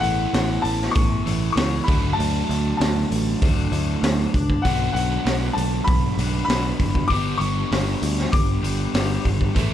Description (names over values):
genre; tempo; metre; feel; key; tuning
indie rock; 98 BPM; 4/4; straight; unclear; A4 = 440 Hz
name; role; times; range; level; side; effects
bright upright piano; melody; 0.0-9.2 s; F#5 to D6; -27 LUFS; left 4 dB; plate reverb, tape echo
overdriven electric guitar; riff; 0.0-9.7 s; B2 to A4; -29 LUFS; left 11 dB; spring reverb
sludgy distorted guitar; riff; 0.0-9.7 s; E3 to E4; -28 LUFS; right 10 dB; overdrive, wide subtle chorus
picked electric bass; bass; 0.0-9.7 s; F#1 to D2; -24 LUFS; equal; none
raw garage drum kit; drums; 0.0-9.7 s; hi-hat, kick drum, snare drum; -23 LUFS; equal; none
room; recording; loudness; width
light reverb; dark, warm production; -19 LUFS; side -11 dB against mid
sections
0.0-9.7 A section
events
none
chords
0.0 Asus2; 1.9 D; 4.6 Bm; 7.1 G